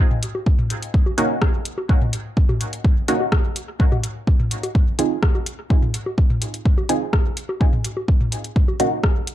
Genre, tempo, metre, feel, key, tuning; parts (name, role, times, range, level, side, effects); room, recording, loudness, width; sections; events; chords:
dub techno; 126 BPM; 4/4; straight; Eb dorian; A4 = 439 Hz
electronic toms and bongos; percussion; 0.1-8.8 s; -26 LUFS; left 1 dB; sidechain pumping on toms, sidechain pumping on perc, dub echo
deep house drum kit; drums; 0.2-9.3 s; hi-hat, rim click; -27 LUFS; left 1 dB; overdrive
electronic kick drum; drums; 0.5-9.1 s; -17 LUFS; equal; overdrive
filtered dub chord stab; stabs; 1.2-9.0 s; Bb3 to Ab4; -24 LUFS; right 1 dB; phaser, cassette tape, sidechain pumping, dub echo
little or no reverb; dark, warm production; -18 LUFS; side -13 dB against mid
0.0-9.3 A section
0.0 Ebm7; 3.8 Fm7; 7.6 Ebm7